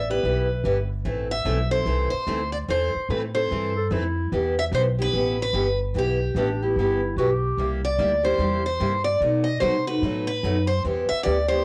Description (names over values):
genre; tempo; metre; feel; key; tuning
acoustic string swing (jazz manouche); 147 BPM; 4/4; swing 64% on 8ths; E minor; A4 = 440 Hz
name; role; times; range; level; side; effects
picked steel-string acoustic guitar; melody; 0.0-11.6 s; G4 to E5; -28 LUFS; equal; none
upright bass; bass; 0.0-11.6 s; G1 to C3; -29 LUFS; equal; none
picked steel-string acoustic guitar; accompaniment; 0.1-11.6 s; B2 to A4; -28 LUFS; equal; none
mellow clarinet; second line; 3.8-7.7 s; D4 to A4; -31 LUFS; equal; none
room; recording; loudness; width
light reverb, studio ambience; home recording on cassette; -24 LUFS; mono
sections
0.0-11.6 A section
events
none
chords
0.0 Em; 1.1 Am; 4.3 Em; 7.6 C7; 9.2 B7b9; 10.8 Em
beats
0.24 0.65 | 1.06 1.47 1.88 2.28 | 2.69 3.10 3.50 3.91 | 4.32 4.73 5.14 5.54 | 5.95 6.36 6.77 7.17 | 7.58 7.99 8.40 8.81 | 9.21 9.62 10.03 10.44 | 10.85 11.26